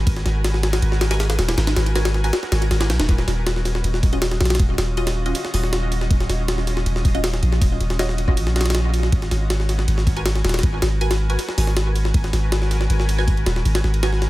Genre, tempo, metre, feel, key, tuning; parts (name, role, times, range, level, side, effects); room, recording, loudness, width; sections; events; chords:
drum and bass, jungle; 159 BPM; 4/4; straight; A4 = 441 Hz
long sustained 808-style bass; bass; 0.0-14.3 s; Eb1 to Cb2; -20 LUFS; equal
jungle sampler-style drum kit; drums; 0.1-14.3 s; hi-hat, kick drum, ride cymbal, snare drum; -22 LUFS; equal; analog delay
filtered dub chord stab; stabs; 1.1-14.1 s; Db4 to Ab5; -31 LUFS; right 1 dB; phaser, dub echo
little or no reverb; echo-heavy mix; -17 LUFS; side -17 dB against mid
0.0-14.3 A section
0.0 Abm9; 3.1 Ebm9; 9.1 Abm9